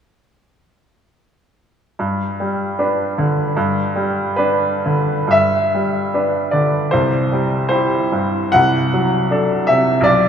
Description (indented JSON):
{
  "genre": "classical, romantic character piece for solo piano",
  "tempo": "58-82 BPM",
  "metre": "2/4",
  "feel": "rubato",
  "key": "G major",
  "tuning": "A4 = 440 Hz",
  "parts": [
    { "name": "bright baby grand piano", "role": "solo", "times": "2.0-10.3 s", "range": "B1 to F#5", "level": "-15 LUFS", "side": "equal", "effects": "none" }
  ],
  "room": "wet church reverb, RT60 3.8 s",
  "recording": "recorded in a church or concert hall",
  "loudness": "-15 LUFS",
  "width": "side -8 dB against mid",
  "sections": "2.0-5.3 A section; 5.3-10.3 B section",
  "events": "none",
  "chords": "2.0 G; 6.9 C; 8.5 D7/C"
}